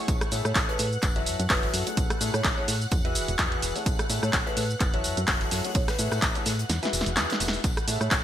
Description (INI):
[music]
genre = piano house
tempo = 127 BPM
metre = 4/4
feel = swing 56% on 16ths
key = A major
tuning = A4 = 438 Hz
[part]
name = analog string pad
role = sustained chords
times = 0.0-8.2 s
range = F#5 to F#6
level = -38 LUFS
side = left 1 dB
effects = ensemble chorus, sidechain pumping
[part]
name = clear concert grand piano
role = riff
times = 0.0-8.2 s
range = E3 to F#5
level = -33 LUFS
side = left 2 dB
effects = wide subtle chorus, sidechain pumping, digital delay
[part]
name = solid FM bass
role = bass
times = 0.1-8.2 s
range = E1 to A2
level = -31 LUFS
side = equal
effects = sidechain pumping
[part]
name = big rock drum kit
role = drums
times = 0.1-8.2 s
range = hi-hat, snare drum, tambourine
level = -38 LUFS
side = left 2 dB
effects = sidechain pumping on hats, high-pass filter on hats, high-pass filter on snare, sidechain pumping on perc, high-pass filter on perc, high-pass filter on room, gated reverb
[part]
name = electronic kick drum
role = drums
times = 0.1-8.2 s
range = none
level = -28 LUFS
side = equal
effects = none
[part]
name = punchy analog drum machine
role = drums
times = 0.1-8.2 s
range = handclaps, hi-hat, rim click, shaker, snare drum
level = -28 LUFS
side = equal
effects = gated reverb
[part]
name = marimba with medium mallets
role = melody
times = 0.5-8.2 s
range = B4 to C#5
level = -36 LUFS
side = right 2 dB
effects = digital delay
[sound]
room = light reverb, studio reverb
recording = bright 1980s-style digital production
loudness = -23 LUFS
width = side -11 dB against mid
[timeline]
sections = 0.0-8.2 A section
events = kick drops out 6.7-7.6; drum fill 6.7-7.6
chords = 0.1 Amaj7; 1.0 F#m7; 2.0 Amaj7; 2.9 Eadd9; 3.9 Amaj7; 4.8 F#m7; 5.8 Amaj7; 6.7 Eadd9; 7.6 Amaj7